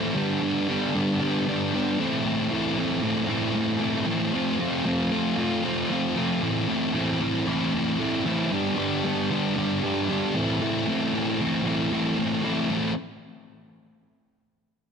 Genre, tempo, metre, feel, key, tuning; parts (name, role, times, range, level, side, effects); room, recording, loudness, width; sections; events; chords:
rock; 115 BPM; 4/4; straight; A minor; A4 = 440 Hz
sludgy distorted guitar; solo; 0.0-12.9 s; G2 to G4; -23 LUFS; equal; overdrive
moderate echo chamber reverb, RT60 2.3 s; -23 LUFS; side -6 dB against mid
0.0-8.5 A section; 8.5-12.7 B section; 12.7-14.8 C section
0.2 G; 2.0 Am; 4.3 F; 6.4 Am; 8.5 G; 10.3 Am